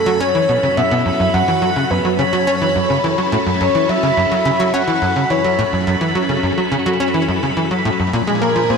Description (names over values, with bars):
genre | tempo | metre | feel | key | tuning
ambient, sequencer-driven space music | 106 BPM | 4/4 | straight | F# minor | A4 = 440 Hz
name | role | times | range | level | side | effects
breathy flute-like synth lead | melody | 0.0-8.8 s | A4 to F#5 | -18 LUFS | left 1 dB | lush chorus, ping-pong delay
phased string machine | sustained chords | 0.0-8.8 s | F#2 to A4 | -21 LUFS | equal | ensemble chorus, phaser
bubbling stepped-filter texture | texture | 0.0-8.8 s | G#5 to B5 | -23 LUFS | right 2 dB | chorus, built-in reverb
tight sequencer bass | riff | 0.1-8.8 s | F#2 to C#4 | -18 LUFS | equal | lush chorus, ping-pong delay
room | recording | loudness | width
wet plate reverb, RT60 2.5 s | cassette tape | -14 LUFS | side -5 dB against mid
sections
0.0-8.8 A section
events
fade-in on string machine 0.0-8.8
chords
0.0 F#m; 8.1 A#7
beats
0.21 0.78 | 1.34 1.91 2.47 3.04 | 3.60 4.17 4.74 5.30 | 5.87 6.43 7.00 7.57 | 8.13 8.70